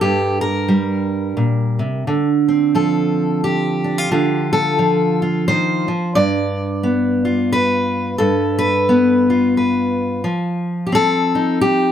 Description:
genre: folk, solo fingerstyle acoustic guitar.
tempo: 88 BPM.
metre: 3/4.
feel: swing 59% on 8ths.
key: unclear.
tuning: A4 = 440 Hz.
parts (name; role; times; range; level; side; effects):
fingerpicked steel-string acoustic guitar; solo; 0.0-11.9 s; G2 to D5; -15 LUFS; equal; none.
room: light reverb.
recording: close, detailed microphones.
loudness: -15 LUFS.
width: side -9 dB against mid.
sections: 0.0-11.9 A section.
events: none.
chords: 0.0 Gm; 2.1 Dm7; 6.2 G7; 10.2 F7.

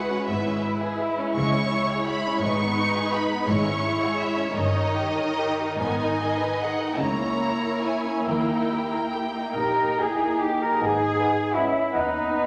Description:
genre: classical, slow romantic movement for symphony orchestra.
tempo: 45-57 BPM (dotted quarters).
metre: 6/8.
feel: rubato.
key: G# minor.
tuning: A4 = 440 Hz.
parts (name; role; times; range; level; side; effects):
rich studio violin section; melody; 0.0-11.9 s; D#5 to C#6; -33 LUFS; equal; none.
warm studio violin section; second line; 0.0-11.9 s; G#3 to D#5; -31 LUFS; equal; none.
dark studio viola section; accompaniment; 0.0-11.9 s; D#3 to F#4; -30 LUFS; equal; none.
warm studio cello section; bass; 0.0-12.5 s; G2 to A#4; -31 LUFS; equal; none.
warm studio double bass section; bass; 0.0-12.5 s; G1 to D#2; -37 LUFS; equal; none.
mellow hollow silver concert flute; second line; 9.5-12.5 s; D#5 to A#5; -29 LUFS; equal; none.
mellow French horn section; sustained chords; 9.6-12.5 s; B3 to G4; -31 LUFS; equal; none.
dark clarinet; second line; 10.8-12.5 s; D#5; -36 LUFS; equal; none.
mellow bassoon; accompaniment; 10.8-12.5 s; B3; -34 LUFS; equal; none.
warm oboe; second line; 11.9-12.5 s; B4; -30 LUFS; equal; none.
room: wet scoring stage reverb, RT60 1.6 s.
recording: none.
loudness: -24 LUFS.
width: mono.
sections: 0.0-10.8 A section; 10.8-12.5 B section.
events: none.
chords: 0.0 C#m7; 1.4 C#m; 2.4 G#m; 3.5 C#m/G#; 4.6 D#7/G; 5.8 G#m; 7.0 A#dim/C#; 8.3 D#; 10.8 G#m.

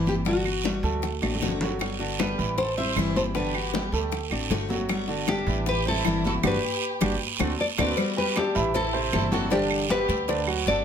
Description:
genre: latin, Cuban son and guajira.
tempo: 156 BPM.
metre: 4/4.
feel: straight.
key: G major.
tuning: A4 = 442 Hz.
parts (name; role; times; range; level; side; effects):
nylon-string guitar; melody; 0.0-10.8 s; F#4 to E5; -28 LUFS; left 3 dB; none.
picked steel-string acoustic guitar; accompaniment; 0.0-10.8 s; D3 to F#4; -30 LUFS; left 4 dB; none.
clear grand piano; arpeggios; 0.0-10.8 s; C3 to D6; -30 LUFS; right 4 dB; none.
upright bass; bass; 0.0-10.8 s; G1 to D2; -31 LUFS; right 1 dB; none.
bongos and cowbell; percussion; 0.1-10.8 s; none; -34 LUFS; left 6 dB; none.
congas; percussion; 0.1-10.8 s; none; -34 LUFS; left 2 dB; none.
guiro; percussion; 0.1-10.8 s; none; -34 LUFS; right 8 dB; none.
claves; percussion; 0.5-10.7 s; none; -33 LUFS; right 8 dB; none.
dark studio violin section; second line; 2.2-10.8 s; D4 to C5; -33 LUFS; right 1 dB; tape echo.
room: moderate studio reverb, RT60 0.6 s.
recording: none.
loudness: -23 LUFS.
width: side -8 dB against mid.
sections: 0.0-8.0 A section; 8.0-10.8 B section.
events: drum fill 1.2-1.8; band accent 6.4-8.0.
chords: 0.3 Gmaj7; 1.0 D7; 1.8 Gmaj7; 2.6 Am7; 3.4 Gmaj7; 4.1 D7; 4.9 Gmaj7; 5.7 Am7; 6.4 Gmaj7; 7.2 D7; 8.0 Gmaj7; 8.7 Am7; 9.5 Gmaj7; 10.3 D7.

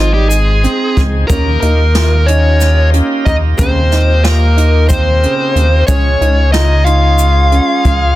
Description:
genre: progressive instrumental, band music in an uneven meter.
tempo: 183 BPM (eighths).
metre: 7/8.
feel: straight.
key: Eb mixolydian.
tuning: A4 = 440 Hz.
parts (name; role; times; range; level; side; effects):
dark smooth lead guitar; melody; 0.0-8.1 s; F4 to F5; -16 LUFS; equal; overdrive, tape echo.
clear trombone; second line; 0.0-8.1 s; F3 to F4; -22 LUFS; left 3 dB; plate reverb.
bright tonewheel organ; accompaniment; 0.0-8.1 s; Ab3 to Ab4; -22 LUFS; left 1 dB; overdrive, slow rotary speaker, plate reverb.
warm grand piano; arpeggios; 0.0-7.9 s; Db3 to F4; -20 LUFS; right 5 dB; plate reverb.
rubbery square bass; bass; 0.0-8.1 s; Ab1 to Eb2; -11 LUFS; equal; none.
jazz brush drum kit; drums; 0.3-8.0 s; hi-hat, kick drum, snare drum; -17 LUFS; equal; none.
egg shaker; percussion; 0.3-8.0 s; none; -27 LUFS; left 6 dB; none.
room: light reverb.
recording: dense, heavily limited modern master.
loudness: -9 LUFS.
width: side -15 dB against mid.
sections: 0.0-8.2 A section.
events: none.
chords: 0.0 Ab; 1.3 Ebadd9; 5.9 Db.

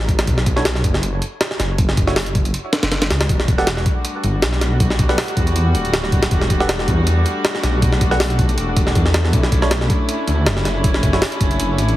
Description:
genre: drum and bass, jungle.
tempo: 159 BPM.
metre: 4/4.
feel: swing 54% on 16ths.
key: E minor.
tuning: A4 = 441 Hz.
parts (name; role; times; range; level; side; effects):
detuned saw bass; bass; 0.0-12.0 s; D1 to E2; -19 LUFS; equal; none.
jungle sampler-style drum kit; drums; 0.0-12.0 s; hi-hat, kick drum, snare drum; -18 LUFS; equal; none.
bell-like tine electric piano; stabs; 0.6-11.2 s; D4 to F#5; -26 LUFS; right 2 dB; phaser, dub echo.
warm chamber string section; sustained chords; 3.3-12.0 s; G3 to F#4; -23 LUFS; left 1 dB; vintage 12-bit sampler grit.
room: light reverb, digital ambience.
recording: heavily compressed radio sound, multiband compression.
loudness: -15 LUFS.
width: side -15 dB against mid.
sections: 0.0-12.0 A section.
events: none.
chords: 0.0 B7(no3); 3.3 Em11; 9.3 Bm11.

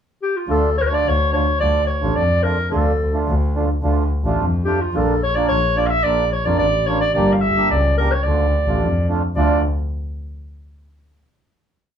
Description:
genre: klezmer.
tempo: 108 BPM.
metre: 4/4.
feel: straight.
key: D harmonic minor.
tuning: A4 = 440 Hz.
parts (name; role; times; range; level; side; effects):
mellow clarinet; melody; 0.2-9.6 s; F4 to F5; -19 LUFS; equal; none.
mellow accordion; accompaniment; 0.5-9.6 s; A3 to G4; -23 LUFS; right 4 dB; none.
rich double bass; bass; 0.5-9.6 s; G1 to F2; -20 LUFS; left 1 dB; none.
room: wet studio reverb, RT60 0.5 s.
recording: heard from further back in the room.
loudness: -16 LUFS.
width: side -8 dB against mid.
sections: 0.0-0.5 pickup bar; 0.5-9.4 A section; 9.4-11.6 final chord.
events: none.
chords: 0.5 Dm; 4.9 Bb; 7.1 Gm; 8.3 Dm.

